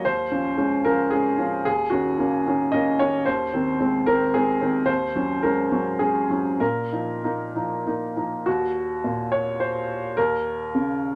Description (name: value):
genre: neoclassical minimalist piano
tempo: 95-114 BPM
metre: 3/4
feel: rubato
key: Eb dorian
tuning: A4 = 440 Hz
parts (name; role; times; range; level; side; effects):
- warm upright piano; solo; 0.0-11.2 s; Eb2 to Eb5; -23 LUFS; equal; none
room: moderate studio ambience, RT60 0.5 s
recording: none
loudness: -23 LUFS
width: mono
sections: 0.0-8.5 A section; 8.5-11.2 B section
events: none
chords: 0.0 Dbadd9/Eb; 1.7 Ebm7; 3.3 Ab/Eb; 4.9 Gbadd9/Eb; 6.6 Bbsus4; 8.5 Ebm; 10.2 Dbsus2/Eb